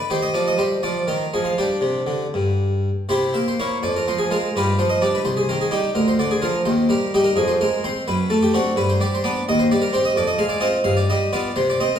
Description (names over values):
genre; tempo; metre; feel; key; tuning
classical, baroque-style suite movement for harpsichord; 78-88 BPM (dotted quarters); 6/8; rubato; C minor; A4 = 440 Hz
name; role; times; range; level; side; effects
harpsichord; solo; 0.0-12.0 s; C2 to F5; -18 LUFS; equal; none
room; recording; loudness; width
wet recital hall reverb, RT60 1.3 s; heard from further back in the room; -18 LUFS; side -8 dB against mid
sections
0.0-3.1 A section; 3.1-12.0 B section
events
none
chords
0.1 Ebmaj13; 0.8 Ebsus24; 1.6 Gsus4; 2.3 N.C.; 3.1 C7; 3.8 Fm; 4.5 G5; 5.3 Cm; 6.0 Dm7b5; 6.7 Eb; 7.4 Fm; 8.1 D7/F#; 8.8 G; 9.5 Cm/Eb; 10.2 Fm7; 10.9 G7